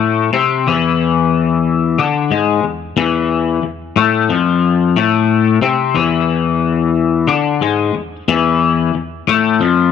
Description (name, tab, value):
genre	rock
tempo	91 BPM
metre	4/4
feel	straight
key	E phrygian dominant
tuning	A4 = 440 Hz
part	twangy electric guitar	solo	0.0-9.9 s	E2 to D4	-12 LUFS	left 7 dB	rotary speaker
room	moderate echo chamber reverb, RT60 2.3 s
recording	none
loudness	-12 LUFS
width	side -7 dB against mid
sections	0.0-9.9 A section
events	none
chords	0.0 E